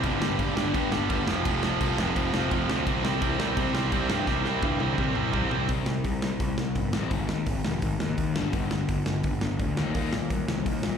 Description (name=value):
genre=punk rock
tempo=169 BPM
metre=4/4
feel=straight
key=C major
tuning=A4 = 439 Hz
part: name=overdriven semi-hollow guitar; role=riff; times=0.0-11.0 s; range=G2 to F4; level=-30 LUFS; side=left 12 dB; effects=none
part: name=tight distorted guitar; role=riff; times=0.0-5.7 s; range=F2 to C4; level=-28 LUFS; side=right 15 dB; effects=distortion, slapback echo
part: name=fuzz picked electric bass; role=bass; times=0.0-11.0 s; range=F1 to C3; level=-29 LUFS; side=equal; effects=overdrive
part: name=big rock drum kit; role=drums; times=0.0-10.9 s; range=crash cymbal, hi-hat, kick drum, snare drum, toms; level=-30 LUFS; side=equal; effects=none
room=little or no reverb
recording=live gig heard through the venue's PA, recital hall reverb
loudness=-24 LUFS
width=side -7 dB against mid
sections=0.0-5.7 A section; 5.7-11.0 B section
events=drum fill 4.3-5.7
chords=0.0 G; 1.3 F; 2.9 C; 5.7 C5; 7.1 Ab5; 8.4 G5; 9.8 Eb